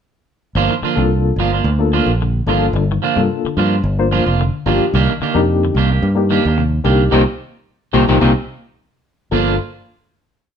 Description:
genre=afrobeat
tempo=110 BPM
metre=4/4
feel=swing 54% on 16ths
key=G minor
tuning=A4 = 440 Hz
part: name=clean electric guitar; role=arpeggios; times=0.6-9.5 s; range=G2 to F3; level=-22 LUFS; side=left 7 dB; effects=none
part: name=electric guitar at the edge of break-up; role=stabs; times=0.6-9.6 s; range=Eb3 to G4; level=-19 LUFS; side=right 9 dB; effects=none
part: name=fingered electric bass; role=bass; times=0.6-9.6 s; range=F1 to G2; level=-16 LUFS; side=equal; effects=none
part: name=reed electric piano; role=accompaniment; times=1.0-9.6 s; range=Bb3 to C5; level=-18 LUFS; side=left 4 dB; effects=overdrive, fast tremolo
room=moderate studio reverb, RT60 0.7 s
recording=band playing live in one room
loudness=-13 LUFS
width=side -8 dB against mid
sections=0.6-9.3 groove; 9.3-10.6 final chord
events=band accent 7.1-9.3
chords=0.6 Gm7; 4.9 Cm9; 9.3 Gm7

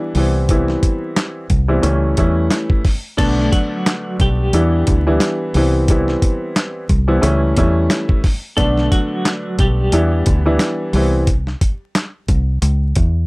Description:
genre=hip hop, boom-bap hip-hop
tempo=89 BPM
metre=4/4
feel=swing 56% on 16ths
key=unclear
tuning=A4 = 440 Hz
part: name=dark upright piano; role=accompaniment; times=0.0-11.3 s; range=D3 to E4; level=-18 LUFS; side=equal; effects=cassette tape, high-pass filter, low-pass filter
part: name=dusty soul sampler-style drum kit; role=drums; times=0.1-13.1 s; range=crash cymbal, handclaps, hi-hat, kick drum, snare drum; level=-17 LUFS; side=equal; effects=none
part: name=deep dub fingered electric bass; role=bass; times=0.2-13.3 s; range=B1 to E2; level=-16 LUFS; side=equal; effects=tube saturation
part: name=clean electric guitar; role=melody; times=3.2-10.8 s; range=F#3 to A4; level=-23 LUFS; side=equal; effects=tremolo, high-pass filter, low-pass filter, analog delay
room=little or no reverb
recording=dry, gritty hardware recording, vinyl crackle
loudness=-14 LUFS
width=side -25 dB against mid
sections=0.0-3.2 A section; 3.2-13.3 B section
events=none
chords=0.2 Cmaj7; 1.8 A7/C#; 3.2 Bm7; 4.5 Em7; 5.5 Cmaj7; 7.2 A7/C#; 8.6 Bm7; 9.9 Em7; 10.9 Cmaj7; 12.6 C#m

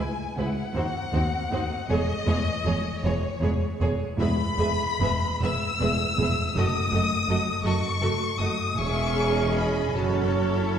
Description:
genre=classical, slow romantic movement for string orchestra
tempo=47-55 BPM (dotted quarters)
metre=6/8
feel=rubato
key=unclear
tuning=A4 = 444 Hz
part: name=rich chamber violin section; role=melody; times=0.0-10.8 s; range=C#5 to E6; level=-29 LUFS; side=left 4 dB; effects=none
part: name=clear chamber violin section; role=second line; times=0.0-10.8 s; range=E4 to E5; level=-33 LUFS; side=left 1 dB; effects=none
part: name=rich chamber viola section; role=accompaniment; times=0.0-10.8 s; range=G#3 to G#4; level=-29 LUFS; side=right 2 dB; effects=none
part: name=rich chamber double bass section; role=bass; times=0.0-10.8 s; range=E1 to Eb2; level=-29 LUFS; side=right 1 dB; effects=none
part: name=warm symphonic cello section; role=bass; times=0.0-10.8 s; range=C#2 to F#2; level=-30 LUFS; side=right 1 dB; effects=none
room=wet scoring stage reverb, RT60 1.5 s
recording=heard from further back in the room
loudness=-23 LUFS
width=side -8 dB against mid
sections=0.0-10.8 A section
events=none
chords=0.0 C#m; 0.8 Cdim; 1.9 C#m/E; 6.6 D#dim/F#; 8.8 C#m/E; 10.0 F#m

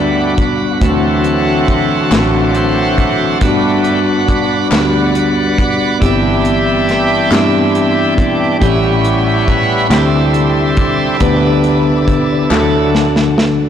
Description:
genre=slow gospel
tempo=46 BPM (dotted quarters)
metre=6/8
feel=straight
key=G major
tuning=A4 = 440 Hz
part: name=mellow tine electric piano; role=accompaniment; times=0.0-13.7 s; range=G2 to B4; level=-14 LUFS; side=left 1 dB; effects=medium stereo tremolo
part: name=bright tonewheel organ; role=sustained chords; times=0.0-13.1 s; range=C3 to F#5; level=-16 LUFS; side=right 1 dB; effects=fast rotary speaker, overdrive
part: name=warm studio string section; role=sustained chords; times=0.0-13.7 s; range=D5 to D6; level=-25 LUFS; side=left 4 dB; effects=none
part: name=fingered electric bass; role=bass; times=0.0-13.7 s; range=G1 to G2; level=-19 LUFS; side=equal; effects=transformer saturation
part: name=modern studio drum kit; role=drums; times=0.4-13.6 s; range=hi-hat, kick drum, snare drum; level=-18 LUFS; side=equal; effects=none
part: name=group handclap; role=percussion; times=2.1-12.9 s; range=none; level=-26 LUFS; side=left 4 dB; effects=none
room=wet concert hall reverb, RT60 2.5 s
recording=blown-out, overdriven recording, overdrive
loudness=-10 LUFS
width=side -9 dB against mid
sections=0.0-13.7 A section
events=tonewheel organ solo 0.0-13.7; drum fill 12.5-13.7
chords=0.0 Gmaj7; 0.8 D7; 3.4 Gmaj7; 6.0 Cmaj7/G; 8.6 A7; 9.9 D9sus4; 11.2 G/D; 12.5 D

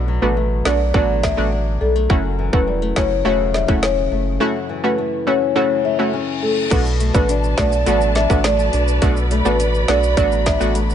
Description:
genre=dancehall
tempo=104 BPM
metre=4/4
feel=straight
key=B minor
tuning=A4 = 436 Hz
part: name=flamenco guitar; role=arpeggios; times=0.0-10.9 s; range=F#2 to D4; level=-25 LUFS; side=left 6 dB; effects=none
part: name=warm sub bass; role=bass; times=0.0-10.9 s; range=E1 to B1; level=-20 LUFS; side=equal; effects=none
part: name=marimba with soft mallets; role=melody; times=0.2-10.6 s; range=A4 to E5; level=-20 LUFS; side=left 1 dB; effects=none
part: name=analog pluck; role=accompaniment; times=0.2-10.7 s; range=A3 to F#4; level=-22 LUFS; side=right 1 dB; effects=chorus
part: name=island pop drum kit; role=drums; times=0.7-10.9 s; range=crash cymbal, hi-hat, kick drum, snare drum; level=-21 LUFS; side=equal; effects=overdrive
part: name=reverse cymbal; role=sound effects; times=5.8-6.7 s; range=none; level=-30 LUFS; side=left 5 dB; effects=none
part: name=warm studio string section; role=sustained chords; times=6.7-10.9 s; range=F#4 to B5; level=-26 LUFS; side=left 1 dB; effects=sidechain pumping
part: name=maracas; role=percussion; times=6.7-10.9 s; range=none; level=-37 LUFS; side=right 9 dB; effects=none
room=little or no reverb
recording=nothing above 10.6 kHz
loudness=-15 LUFS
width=side -9 dB against mid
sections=0.0-6.7 A section; 6.7-10.9 B section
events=reverse cymbal 5.8-6.7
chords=0.0 Bm7; 2.1 F#m7; 6.7 Bm7

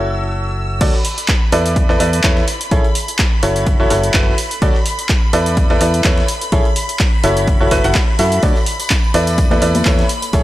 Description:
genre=piano house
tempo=126 BPM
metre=4/4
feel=swing 55% on 16ths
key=unclear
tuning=A4 = 445 Hz
part: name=string machine, violins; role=sustained chords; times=0.0-10.4 s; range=B5 to E6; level=-26 LUFS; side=equal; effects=ensemble chorus, sidechain pumping
part: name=clear baby grand piano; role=riff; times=0.0-10.4 s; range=E4 to F#5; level=-18 LUFS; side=equal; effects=sidechain pumping, tape echo
part: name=fingered electric bass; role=bass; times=0.0-10.4 s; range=F#1 to F#2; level=-19 LUFS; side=equal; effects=sidechain pumping, low-pass filter
part: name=breakbeat sampler-style drum kit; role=drums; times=0.8-10.4 s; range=hi-hat, snare drum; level=-31 LUFS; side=equal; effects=none
part: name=electronic kick drum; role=drums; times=0.8-10.4 s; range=none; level=-15 LUFS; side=equal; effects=overdrive
part: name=punchy analog drum machine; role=drums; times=0.8-10.4 s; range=crash cymbal, handclaps, hi-hat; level=-21 LUFS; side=equal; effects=overdrive
part: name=tambourine and congas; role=percussion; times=8.4-10.4 s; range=none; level=-24 LUFS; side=left 3 dB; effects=none
room=little or no reverb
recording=dry, gritty hardware recording, transformer saturation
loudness=-12 LUFS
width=side -15 dB against mid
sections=0.8-10.4 A section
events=drop 0.8-10.4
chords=0.0 F#m7; 0.8 Dmaj7; 1.8 E7sus4; 2.7 Amaj7; 3.7 F#m7; 4.6 Dmaj7; 5.6 E7sus4; 6.5 Amaj7; 7.5 F#m7; 8.4 Dmaj7; 9.4 E7sus4

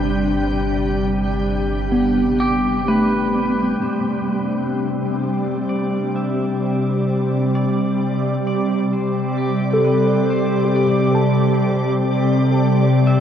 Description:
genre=ambient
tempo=65 BPM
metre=4/4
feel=straight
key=unclear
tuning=A4 = 440 Hz
part: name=pedal steel guitar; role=melody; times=0.0-13.2 s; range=G4 to E5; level=-30 LUFS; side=right 1 dB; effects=tape echo
part: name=soft additive organ-like pad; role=sustained chords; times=0.0-13.2 s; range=C3 to G5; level=-19 LUFS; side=equal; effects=ensemble chorus, built-in reverb
part: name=tine electric piano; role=arpeggios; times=0.0-3.8, 9.7-13.2 s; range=A3 to A5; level=-22 LUFS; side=equal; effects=tape echo
part: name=warm sub bass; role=bass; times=0.0-3.8 s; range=G1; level=-26 LUFS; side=equal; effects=none
part: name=bowed-like drone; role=drone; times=0.0-13.2 s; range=C3 to G3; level=-24 LUFS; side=left 1 dB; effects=built-in reverb
room=wet huge ambient reverb, RT60 8.4 s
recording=worn, warbling old tape, cassette tape, warbly pitch drift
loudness=-16 LUFS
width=side -9 dB against mid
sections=0.0-3.8 A section; 3.8-13.2 A section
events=fade-in on pedal steel guitar 3.8-13.2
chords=0.0 G; 3.8 Csus2

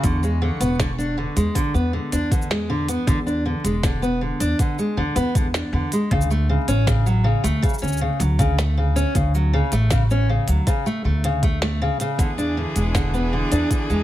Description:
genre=folktronica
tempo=79 BPM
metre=4/4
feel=straight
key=E mixolydian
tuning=A4 = 440 Hz
part: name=fingerpicked steel-string acoustic guitar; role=arpeggios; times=0.0-14.0 s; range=C#3 to D4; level=-23 LUFS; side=equal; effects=ping-pong delay
part: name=upright bass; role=bass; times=0.0-14.0 s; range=E1 to E2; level=-21 LUFS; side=equal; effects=none
part: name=electronic kick drum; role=drums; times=0.0-13.9 s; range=none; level=-21 LUFS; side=equal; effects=overdrive
part: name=minimal click drum kit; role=drums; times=0.0-14.0 s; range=hi-hat, shaker, snare drum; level=-29 LUFS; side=equal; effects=none
part: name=rich string quartet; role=sustained chords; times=12.2-14.0 s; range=E3 to G#4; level=-29 LUFS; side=right 1 dB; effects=none
room=small room ambience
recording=vinyl crackle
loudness=-18 LUFS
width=side -14 dB against mid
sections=0.0-14.0 A section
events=none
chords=0.0 E7; 6.1 Dmaj7(no3); 12.2 E7

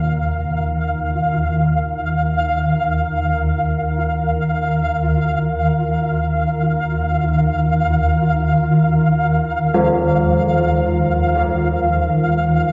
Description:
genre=dark ambient drone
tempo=free time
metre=none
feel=none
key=unclear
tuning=A4 = 440 Hz
part: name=old church bells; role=arpeggios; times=0.0-12.7 s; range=Bb2 to F3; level=-23 LUFS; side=equal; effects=tape echo
part: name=swarming drone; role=drone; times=0.0-12.7 s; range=Eb2 to Eb3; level=-20 LUFS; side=equal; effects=built-in reverb
part: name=flickering grainy texture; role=texture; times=0.0-12.7 s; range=F5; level=-24 LUFS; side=equal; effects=built-in reverb
room=wet cathedral reverb, RT60 5.2 s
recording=worn, warbling old tape, cassette tape, warbly pitch drift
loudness=-18 LUFS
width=mono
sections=0.0-12.7 A section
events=filter sweep on synth drone 0.0-12.7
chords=0.0 Eb5

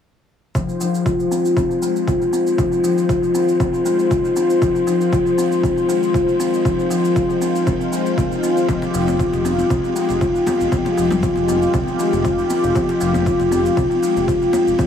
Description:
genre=afro house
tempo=118 BPM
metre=4/4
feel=swing 53% on 16ths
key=F minor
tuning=A4 = 439 Hz
part: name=warm analog pad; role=sustained chords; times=0.6-14.9 s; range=Eb3 to C5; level=-23 LUFS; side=left 1 dB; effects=chorus, sidechain pumping
part: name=buzzing kalimba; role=arpeggios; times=0.6-14.9 s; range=F3 to F4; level=-17 LUFS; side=left 2 dB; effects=sidechain pumping, low-pass filter, analog delay
part: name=cabasa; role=drums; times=0.6-14.9 s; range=none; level=-36 LUFS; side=right 3 dB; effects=none
part: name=electronic kick drum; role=drums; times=0.6-14.9 s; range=none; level=-22 LUFS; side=equal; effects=none
part: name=congas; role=percussion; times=8.7-14.9 s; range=none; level=-27 LUFS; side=left 4 dB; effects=analog delay
part: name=round analog bass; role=bass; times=8.9-14.7 s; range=F1 to C2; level=-25 LUFS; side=equal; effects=sidechain pumping
room=moderate plate reverb, RT60 1.6 s, digital ambience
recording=echo-heavy mix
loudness=-16 LUFS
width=side -8 dB against mid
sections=0.6-14.9 A section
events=filter sweep on kalimba 0.6-14.9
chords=0.6 Fm7

